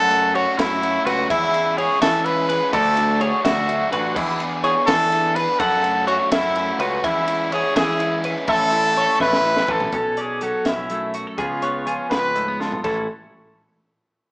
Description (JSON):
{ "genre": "math rock and midwest emo", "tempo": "83 BPM (dotted quarters)", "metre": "6/8", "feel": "straight", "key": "A major", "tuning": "A4 = 441 Hz", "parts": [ { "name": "clear trumpet", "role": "melody", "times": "0.0-13.1 s", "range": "C#4 to B4", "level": "-20 LUFS", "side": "equal", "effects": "none" }, { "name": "twelve-string electric guitar", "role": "arpeggios", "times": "0.0-13.1 s", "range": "G#4 to F#5", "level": "-23 LUFS", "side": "equal", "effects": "none" }, { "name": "overdriven electric guitar", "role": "riff", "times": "0.0-9.9 s", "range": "E3 to G#4", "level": "-26 LUFS", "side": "equal", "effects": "none" }, { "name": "growling picked electric bass", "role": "bass", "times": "0.0-13.1 s", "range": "A1 to E3", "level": "-28 LUFS", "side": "equal", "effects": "overdrive" }, { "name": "compact cocktail drum kit", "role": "drums", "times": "0.1-13.0 s", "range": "crash cymbal, hi-hat, kick drum, ride cymbal, snare drum, toms", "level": "-27 LUFS", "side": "equal", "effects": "none" }, { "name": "twelve-string electric guitar", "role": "accompaniment", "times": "9.9-13.1 s", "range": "F#2 to A4", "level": "-29 LUFS", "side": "equal", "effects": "none" } ], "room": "moderate large studio reverb, RT60 1.2 s", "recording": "band playing live in one room, small speaker sound", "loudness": "-17 LUFS", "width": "side -33 dB against mid", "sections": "0.0-9.9 A section; 9.9-12.8 B section; 12.8-14.3 C section", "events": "drum fill 9.2-9.9, 12.6", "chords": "0.0 F#m7; 1.3 C#m7/E; 2.7 D69; 4.2 E7sus4; 5.6 F#m7; 7.0 C#m7/E; 8.5 A; 9.9 Bm11; 11.4 C#7; 12.8 A6" }